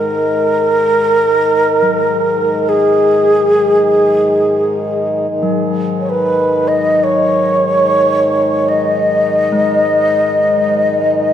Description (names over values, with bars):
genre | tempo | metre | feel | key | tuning
world meditative, free-time meditation music | free time | none | none | unclear | A4 = 439 Hz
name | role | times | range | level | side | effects
breathy mellow xiao | melody | 0.0-11.3 s | G#4 to D#5 | -12 LUFS | equal | diffuse ambient delay
pedal harmonium | drone | 0.0-11.3 s | G#2 to D#3 | -18 LUFS | left 1 dB | none
bronze singing bowl | texture | 0.0-11.3 s | F#3 to G#3 | -24 LUFS | left 4 dB | stereo widening
room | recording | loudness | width
wet scoring stage reverb, RT60 1.8 s, small room reverb | none | -11 LUFS | side -10 dB against mid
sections
0.0-5.3 A section; 5.3-11.3 A section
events
none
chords
none